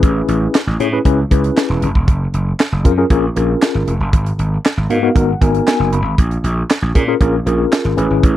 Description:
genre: early-eighties boogie funk.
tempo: 117 BPM.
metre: 4/4.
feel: straight.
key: unclear.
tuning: A4 = 438 Hz.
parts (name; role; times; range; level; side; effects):
mellow tine electric piano; accompaniment; 0.0-8.4 s; B3 to B5; -16 LUFS; left 3 dB; medium stereo tremolo.
gritty slap bass; bass; 0.0-8.4 s; E1 to A#2; -17 LUFS; equal; overdrive.
tight funk drum kit; drums; 0.0-8.4 s; handclaps, hi-hat, kick drum, snare drum; -14 LUFS; right 1 dB; none.
room: little or no reverb.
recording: dry, close 1970s-style studio recording.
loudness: -13 LUFS.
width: side -13 dB against mid.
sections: 0.0-8.4 A section.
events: tine electric piano fill 4.6-6.2.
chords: 0.0 Amaj7; 2.1 F#maj7; 4.1 G#m7; 6.2 A#m7.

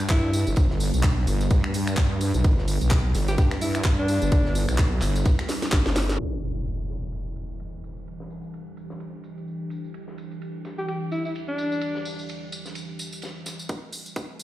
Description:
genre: bass house.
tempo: 128 BPM.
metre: 4/4.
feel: swing 57% on 16ths.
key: E minor.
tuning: A4 = 439 Hz.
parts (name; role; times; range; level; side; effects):
deep dark ambient pad; sustained chords; 0.0-14.4 s; E3 to B4; -34 LUFS; right 1 dB; chorus, built-in reverb, sidechain pumping.
wobble bass; bass; 0.0-6.2 s; G1 to G2; -24 LUFS; equal; chorus, overdrive, sidechain pumping.
garage drum kit; drums; 0.0-14.4 s; finger snaps, handclaps, hi-hat, snare drum, tambourine; -31 LUFS; equal; low-pass filter on hats, low-pass filter on perc, low-pass filter on snare, low-pass filter on room.
clear alto saxophone; melody; 0.1-4.6, 10.8-12.1 s; D4 to G4; -29 LUFS; equal; digital delay.
big rock drum kit; drums; 0.1-13.6 s; hi-hat, ride cymbal, snare drum; -42 LUFS; equal; high-pass filter on cymbals, low-pass filter on cymbals, high-pass filter on hats, low-pass filter on hats, high-pass filter on snare, low-pass filter on snare, high-pass filter on room, low-pass filter on room.
electronic kick drum; drums; 0.1-5.8, 13.7-14.3 s; none; -21 LUFS; equal; high-pass filter on kick, high-pass filter on room.
impact and riser; sound effects; 6.2-8.1, 14.0-14.4 s; none; -33 LUFS; equal; none.
room: light reverb, small room ambience.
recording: played on a big sound system in a bare room, stone room reverb, low-pass filter.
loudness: -22 LUFS.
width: side -15 dB against mid.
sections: 0.0-6.2 A section; 6.2-13.7 B section.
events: drop 0.0-6.2; drum fill 5.5-6.2; band accent 6.1; impact 6.2-8.1; filter sweep on drum 6.2-13.7; filter sweep 6.2-13.7; riser 14.0-14.4.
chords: 0.0 G; 6.2 Em7.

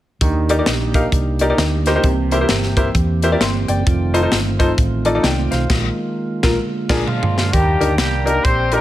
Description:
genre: uptempo gospel.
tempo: 131 BPM.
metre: 4/4.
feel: swing 61% on 8ths.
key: Eb major.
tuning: A4 = 441 Hz.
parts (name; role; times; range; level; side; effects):
bright baby grand piano; accompaniment; 0.2-8.8 s; C3 to C6; -20 LUFS; left 2 dB; none.
mellow tonewheel organ; sustained chords; 0.2-8.8 s; D3 to Bb5; -23 LUFS; right 3 dB; slow rotary speaker.
hollow-body short-scale fingered electric bass; bass; 0.2-8.8 s; F1 to E2; -20 LUFS; equal; none.
crisp fusion drum kit; drums; 0.2-8.8 s; crash cymbal, hi-hat, kick drum, snare drum, toms; -19 LUFS; equal; none.
clear horn section; melody; 7.1-8.8 s; F3 to C5; -19 LUFS; left 1 dB; none.
room: light reverb, studio ambience.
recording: none.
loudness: -15 LUFS.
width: side -14 dB against mid.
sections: 0.2-7.5 A section; 7.5-8.8 B section.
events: band accent 5.7-7.5; drum fill 6.6-7.5.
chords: 0.2 Ebmaj7; 2.0 C7; 3.9 F7; 5.7 Bb7sus4; 6.6 Bb7; 7.5 Ebmaj7.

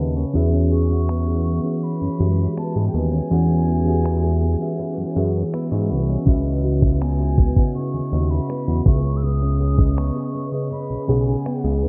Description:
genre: contemporary R&B.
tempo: 81 BPM.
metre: 4/4.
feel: straight.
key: E major.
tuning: A4 = 440 Hz.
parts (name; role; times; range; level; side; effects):
muted felt-like synth keys; accompaniment; 0.0-11.9 s; C#3 to E6; -26 LUFS; equal; chorus.
nylon-string guitar; arpeggios; 0.0-11.9 s; C#3 to G#4; -29 LUFS; equal; ensemble chorus.
fat analog bass; bass; 0.0-11.9 s; B1 to G#2; -22 LUFS; equal; none.
breathy jazz flute; melody; 0.7-11.8 s; G5 to E6; -38 LUFS; equal; delay.
dusty soul sampler-style drum kit; drums; 1.1-11.6 s; finger snaps, hi-hat, kick drum; -20 LUFS; equal; none.
room: moderate lush hall reverb, RT60 2.8 s.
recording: bright 1980s-style digital production, low-pass filter.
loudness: -20 LUFS.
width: mono.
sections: 0.0-11.9 A section.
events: break 0.0-6.3; filter sweep 0.0-11.9.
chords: 0.3 E6; 6.3 C#m11; 8.9 B69.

